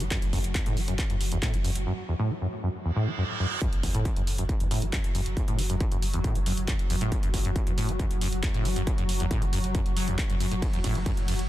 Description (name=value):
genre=driving peak-time techno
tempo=137 BPM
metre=4/4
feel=straight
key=F# minor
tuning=A4 = 440 Hz
part: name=acid bass, saw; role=riff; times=0.0-11.3 s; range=E2 to F#3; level=-30 LUFS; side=equal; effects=wide subtle chorus, sidechain pumping, ping-pong delay
part: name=saturated sub bass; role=bass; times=0.0-11.5 s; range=F#1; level=-31 LUFS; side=equal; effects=tube saturation, sidechain pumping, low-pass filter
part: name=swarming drone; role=drone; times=0.0-11.5 s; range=F#3 to F#4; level=-36 LUFS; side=left 1 dB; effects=built-in reverb, sidechain pumping
part: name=punchy analog drum machine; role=drums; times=0.0-11.5 s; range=handclaps, hi-hat, ride cymbal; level=-36 LUFS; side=right 1 dB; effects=sidechain pumping on hats, sidechain pumping on cymbals
part: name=electronic kick drum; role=drums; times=0.1-11.2 s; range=none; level=-28 LUFS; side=equal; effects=distortion, overdrive
part: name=reverse cymbal and impact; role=sound effects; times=2.9-5.4 s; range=none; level=-35 LUFS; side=right 4 dB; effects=none
room=little or no reverb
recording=dense, heavily limited modern master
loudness=-25 LUFS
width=side -14 dB against mid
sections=0.0-3.6 A section; 3.6-11.5 B section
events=reverse cymbal 2.9-3.6; drop 3.6-11.5; impact 3.6-5.4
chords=0.0 F#m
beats=| 0.11 0.55 0.99 1.43 | 1.86 2.30 2.74 3.18 | 3.62 4.05 4.49 4.93 | 5.37 5.81 6.24 6.68 | 7.12 7.56 8.00 8.43 | 8.87 9.31 9.75 10.19 | 10.62 11.06